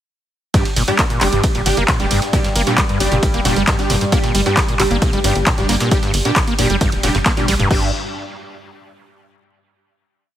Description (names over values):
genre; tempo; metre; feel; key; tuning
driving peak-time techno; 134 BPM; 4/4; straight; G minor; A4 = 443 Hz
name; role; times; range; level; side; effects
overdriven acid bass; riff; 0.5-7.9 s; G2 to Bb3; -21 LUFS; equal; distortion, analog chorus, sidechain pumping, ping-pong delay
rave stab; stabs; 0.5-7.9 s; G3 to G4; -22 LUFS; right 1 dB; chorus, built-in reverb, sidechain pumping, ping-pong delay
analog drone; drone; 1.2-7.8 s; G2 to G3; -26 LUFS; equal; chorus, sidechain pumping
breakbeat sampler-style drum kit; drums; 0.5-7.6 s; hi-hat, snare drum; -29 LUFS; equal; none
electronic kick drum; drums; 0.5-7.8 s; none; -18 LUFS; equal; none
punchy analog drum machine; drums; 0.5-7.8 s; crash cymbal, handclaps, hi-hat, ride cymbal; -20 LUFS; equal; sidechain pumping on hats, sidechain pumping on cymbals
tight sequencer bass; bass; 0.8-7.9 s; D1 to Bb1; -21 LUFS; equal; sidechain pumping
room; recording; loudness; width
light reverb; heavily compressed radio sound; -14 LUFS; side -11 dB against mid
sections
0.5-7.7 drop; 7.7-9.5 final chord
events
drop 0.5-7.7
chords
0.5 G5